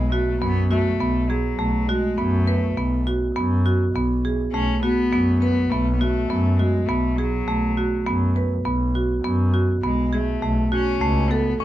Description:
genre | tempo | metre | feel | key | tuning
contemporary instrumental, chamber music in an uneven meter | 102 BPM | 5/4 | straight | unclear | A4 = 440 Hz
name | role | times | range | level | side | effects
rich cello | melody | 0.0-11.6 s | F#3 to C#4 | -26 LUFS | left 4 dB | none
rich double bass | bass | 0.0-11.6 s | B1 to F#2 | -23 LUFS | equal | none
marimba with medium hard mallets | arpeggios | 0.1-11.6 s | A3 to B4 | -22 LUFS | right 2 dB | none
room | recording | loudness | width
little or no reverb | dark, warm production | -19 LUFS | side -13 dB against mid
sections
0.0-11.6 A section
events
none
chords
0.0 B5; 10.4 F#m/B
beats
0.40 0.99 | 1.58 2.17 2.76 3.35 3.94 | 4.53 5.12 5.71 6.30 6.89 | 7.48 8.06 8.65 9.24 9.83 | 10.42 11.01 11.60

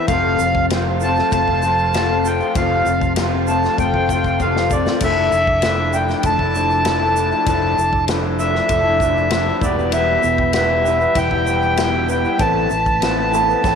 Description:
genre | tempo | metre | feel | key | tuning
folk rock and heartland rock | 97 BPM | 4/4 | straight | unclear | A4 = 439 Hz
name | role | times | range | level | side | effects
accordion | melody | 0.0-13.8 s | D5 to A5 | -18 LUFS | equal | none
picked old ladder-braced acoustic guitar | accompaniment | 0.0-13.8 s | A2 to B4 | -25 LUFS | left 13 dB | none
tonewheel organ | sustained chords | 0.0-13.8 s | D4 to D5 | -32 LUFS | right 2 dB | chorus vibrato, slow rotary speaker
electric guitar through a small old amp | riff | 0.0-13.8 s | E2 to F4 | -21 LUFS | equal | none
fingered electric bass | bass | 0.1-13.8 s | E1 to A1 | -23 LUFS | right 2 dB | none
natural country drum kit | drums | 0.1-13.8 s | crash cymbal, kick drum, ride cymbal, snare drum | -25 LUFS | left 2 dB | none
tube shaker | percussion | 0.1-13.8 s | none | -37 LUFS | right 16 dB | none
warm upright piano | second line | 13.3-13.8 s | G5 to A5 | -23 LUFS | right 14 dB | none
room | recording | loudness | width
moderate echo chamber reverb, RT60 1.7 s, small room ambience | 1960s-style stereo with parts hard left and right | -15 LUFS | side -6 dB against mid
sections
0.0-13.8 A section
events
drum fill 3.8-5.0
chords
0.1 F; 5.0 Dmadd9/F; 9.6 Em; 12.4 Amadd9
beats
| 0.09 0.70 1.32 1.94 | 2.55 3.17 3.78 4.40 | 5.01 5.63 6.24 6.86 | 7.47 8.09 8.70 9.32 | 9.93 10.55 11.17 11.79 | 12.41 13.03 13.65

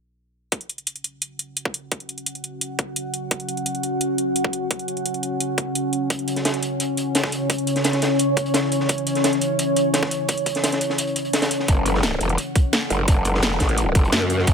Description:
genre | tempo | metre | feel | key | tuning
dark technical drum and bass | 172 BPM | 4/4 | straight | unclear | A4 = 440 Hz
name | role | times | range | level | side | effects
deep dark ambient pad | sustained chords | 2.2-14.5 s | C#4 to F#5 | -23 LUFS | equal | chorus, built-in reverb, sidechain pumping
drum and bass drum kit | drums | 0.5-14.5 s | hi-hat, snare drum | -25 LUFS | equal | none
electronic kick drum | drums | 0.5-14.5 s | none | -20 LUFS | equal | high-pass filter on kick, high-pass filter on room
crunchy breakbeat drum kit | drums | 6.1-14.5 s | hi-hat, snare drum | -26 LUFS | equal | high-pass filter on hats, high-pass filter on snare, high-pass filter on room
growl bass | bass | 11.7-14.5 s | E1 to F#2 | -20 LUFS | equal | chorus, overdrive, sidechain pumping
room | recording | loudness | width
moderate lush hall reverb, RT60 2.0 s, digital ambience | none | -20 LUFS | side -6 dB against mid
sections
0.5-11.7 A section; 11.7-14.5 B section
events
kick drops out 11.0-11.7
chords
0.5 F#5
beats
| 0.52 0.87 1.22 1.57 | 1.92 2.27 2.61 2.96 | 3.31 3.66 4.01 4.36 | 4.71 5.05 5.40 5.75 | 6.10 6.45 6.80 7.15 | 7.50 7.85 8.20 8.54 | 8.89 9.24 9.59 9.94 | 10.29 10.64 10.99 11.34 | 11.68 12.03 12.38 12.73 | 13.08 13.43 13.78 14.12 | 14.47

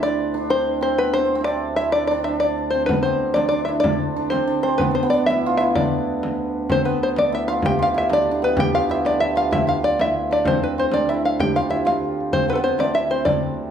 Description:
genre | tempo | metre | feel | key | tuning
medieval dance | 127 BPM (dotted quarters) | 6/8 | straight | D dorian | A4 = 441 Hz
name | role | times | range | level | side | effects
open-back banjo | melody | 0.0-13.7 s | A4 to G5 | -21 LUFS | left 2 dB | none
hammered dulcimer | second line | 0.0-13.7 s | B3 to G4 | -22 LUFS | right 3 dB | none
pedal harmonium | drone | 0.0-13.7 s | D2 | -32 LUFS | left 1 dB | none
frame drum | percussion | 2.9-13.4 s | none | -25 LUFS | left 2 dB | none
room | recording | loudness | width
wet large studio reverb, RT60 0.9 s | band playing live in one room | -18 LUFS | side -8 dB against mid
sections
0.0-6.7 A section; 6.7-13.7 B section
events
speeding up 0.0-13.7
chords
none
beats
| 0.03 0.51 | 0.99 1.46 | 1.94 2.42 | 2.90 3.37 | 3.85 4.33 | 4.80 5.28 | 5.75 6.22 | 6.70 7.17 | 7.64 8.11 | 8.59 9.06 | 9.53 9.99 | 10.46 10.93 | 11.40 11.87 | 12.34 12.80 | 13.27

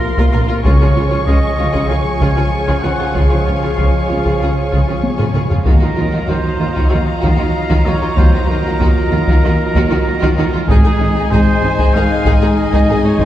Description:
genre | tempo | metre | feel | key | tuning
cinematic, epic orchestral film score | 96 BPM | 4/4 | straight | unclear | A4 = 440 Hz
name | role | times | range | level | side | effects
warm symphonic violin section | melody | 0.0-13.2 s | Ab5 to Db6 | -27 LUFS | left 3 dB | none
mellow French horn section | sustained chords | 0.0-13.2 s | C3 to F4 | -23 LUFS | left 1 dB | none
rich symphonic string section | sustained chords | 0.0-13.2 s | F3 to C6 | -23 LUFS | left 1 dB | none
clear trumpet | stabs | 0.0-13.2 s | Ab4 to Ab5 | -22 LUFS | right 1 dB | none
rich symphonic violin section | second line | 0.2-13.2 s | Eb4 to Bb4 | -26 LUFS | left 2 dB | none
clear symphonic viola section | accompaniment | 0.2-13.2 s | Eb4 to F4 | -27 LUFS | equal | none
rich symphonic cello section | bass | 0.2-13.2 s | Ab2 to Eb3 | -20 LUFS | right 1 dB | none
taiko ensemble | drums | 0.2-13.2 s | none | -15 LUFS | equal | none
rich symphonic double bass section | bass | 0.3-13.2 s | Ab1 to Eb2 | -20 LUFS | right 2 dB | none
room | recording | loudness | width
wet concert hall reverb, RT60 2.2 s | heard from further back in the room | -12 LUFS | side -12 dB against mid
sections
0.0-13.2 A section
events
drum fill 5.0-5.7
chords
0.0 Bbsus2; 0.6 Db; 5.7 Ebmadd9; 10.7 Ab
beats
0.02 | 0.64 1.27 1.90 2.52 | 3.15 3.78 4.41 5.04 | 5.66 6.29 6.92 7.55 | 8.17 8.80 9.43 10.06 | 10.69 11.31 11.94 12.57 | 13.20

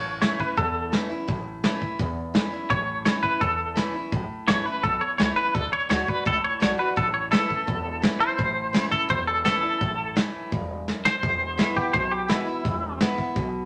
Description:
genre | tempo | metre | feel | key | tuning
rockabilly | 169 BPM | 4/4 | straight | A mixolydian | A4 = 442 Hz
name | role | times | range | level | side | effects
twangy electric guitar | melody | 0.0-13.0 s | E4 to C#5 | -26 LUFS | equal | tremolo
picked steel-string acoustic guitar | accompaniment | 0.0-13.7 s | E2 to F#4 | -33 LUFS | equal | none
upright bass | bass | 0.0-13.7 s | E1 to E2 | -37 LUFS | equal | none
soft brush drum kit | drums | 0.2-13.4 s | hi-hat, kick drum, snare drum | -28 LUFS | equal | none
room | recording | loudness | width
moderate studio reverb, RT60 0.9 s | none | -25 LUFS | mono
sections
0.0-13.7 A section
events
drum fill 10.9-11.2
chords
0.0 A; 5.5 D; 7.0 A; 11.2 E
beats
0.22 0.57 0.93 | 1.28 1.64 2.00 2.35 | 2.71 3.06 3.42 3.77 | 4.13 4.48 4.84 5.19 | 5.55 5.90 6.26 6.62 | 6.97 7.33 7.68 8.04 | 8.39 8.75 9.10 9.46 | 9.81 10.17 10.52 10.88 | 11.23 11.59 11.94 12.30 | 12.65 13.01 13.36

